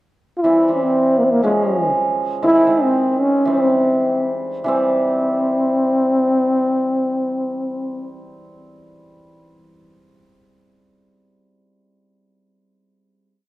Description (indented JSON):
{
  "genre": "klezmer",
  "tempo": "90-121 BPM",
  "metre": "2/4",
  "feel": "straight",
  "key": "unclear",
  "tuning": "A4 = 440 Hz",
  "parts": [
    { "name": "mellow trombone", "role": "melody", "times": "0.4-8.1 s", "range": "Ab3 to F4", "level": "-16 LUFS", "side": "equal", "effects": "none" },
    { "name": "hammered dulcimer", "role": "accompaniment", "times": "0.4-9.8 s", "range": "Eb3 to Db4", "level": "-21 LUFS", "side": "right 1 dB", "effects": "none" }
  ],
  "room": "moderate recital hall reverb, RT60 1.3 s",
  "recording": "worn, warbling old tape, cassette tape, warbly pitch drift",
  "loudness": "-15 LUFS",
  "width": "side -17 dB against mid",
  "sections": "0.0-0.4 pickup bar; 0.4-4.7 A section; 4.7-7.3 final chord",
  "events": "slowing down 2.4-4.7",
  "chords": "0.4 C; 1.4 Db; 2.4 Ab; 3.5 C",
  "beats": "| 0.44 0.94 | 1.44 1.94 | 2.44 2.94 | 3.47 4.04 | 4.67 5.33 | 5.99 6.65"
}